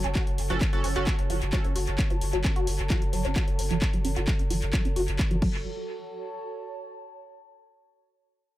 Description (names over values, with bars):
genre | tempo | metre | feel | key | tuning
driving peak-time techno | 131 BPM | 4/4 | straight | F# minor | A4 = 441 Hz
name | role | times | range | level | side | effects
resonant blip pluck | riff | 0.0-5.6 s | E#3 to F#4 | -32 LUFS | equal | phaser, sidechain pumping, analog delay
saturated sub bass | bass | 0.0-5.6 s | F#1 | -30 LUFS | equal | overdrive, sidechain pumping, low-pass filter
punchy analog drum machine | drums | 0.0-5.5 s | crash cymbal, handclaps, hi-hat | -35 LUFS | equal | sidechain pumping on hats, sidechain pumping on cymbals, analog delay
warbly tape-like pad | texture | 0.0-7.4 s | F#4 to A5 | -37 LUFS | right 1 dB | chorus, built-in reverb, sidechain pumping
electronic kick drum | drums | 0.2-5.5 s | none | -26 LUFS | equal | overdrive
sync-sweep polysynth | stabs | 0.5-1.6 s | C#4 to A4 | -34 LUFS | right 3 dB | analog chorus, sidechain pumping, analog delay
room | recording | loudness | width
light reverb | echo-heavy mix | -24 LUFS | side -15 dB against mid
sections
0.0-5.7 A section; 5.7-7.5 B section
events
filter sweep on synth arpeggio sound 0.0-5.7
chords
0.0 F#m